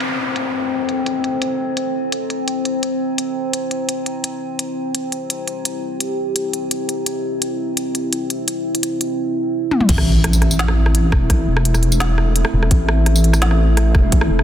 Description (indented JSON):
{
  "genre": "half-time drum and bass",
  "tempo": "170 BPM",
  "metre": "4/4",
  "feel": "half-time",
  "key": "A minor",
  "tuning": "A4 = 440 Hz",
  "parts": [
    { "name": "deep dark ambient pad", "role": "sustained chords", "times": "0.2-14.4 s", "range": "C4 to E5", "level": "-25 LUFS", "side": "equal", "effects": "chorus, built-in reverb, sidechain pumping" },
    { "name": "organic electronic drum kit", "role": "drums", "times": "0.0-14.4 s", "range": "crash cymbal, hi-hat, rim click, snare drum, tambourine, toms", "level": "-20 LUFS", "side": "left 1 dB", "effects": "soft clipping on snare, low-pass filter on snare, studio reverb, low-pass filter on hats, low-pass filter on perc, low-pass filter on toms, low-pass filter on cymbals" },
    { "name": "downlifter and impact", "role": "sound effects", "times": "0.0-1.4, 9.9-11.3 s", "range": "none", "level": "-24 LUFS", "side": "equal", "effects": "none" },
    { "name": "metallic inharmonic drone", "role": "texture", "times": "0.0-14.4 s", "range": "A3 to C4", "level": "-24 LUFS", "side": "left 1 dB", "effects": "chorus, built-in reverb" },
    { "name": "deep soft wobble bass", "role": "bass", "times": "9.9-14.4 s", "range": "E1 to A1", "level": "-15 LUFS", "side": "equal", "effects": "chorus, tube saturation" },
    { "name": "electronic kick drum", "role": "drums", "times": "9.9-14.2 s", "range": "none", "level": "-15 LUFS", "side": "equal", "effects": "studio reverb" }
  ],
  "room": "light reverb",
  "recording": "dense, heavily limited modern master",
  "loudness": "-16 LUFS",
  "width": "side -10 dB against mid",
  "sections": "0.0-9.9 A section; 9.9-14.4 B section",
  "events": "filter sweep on drum 0.0-9.9; filter sweep on ambient pad 0.0-9.9; drum fill 9.7; drop 9.9-14.4; impact 9.9-11.3",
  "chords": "0.0 Am"
}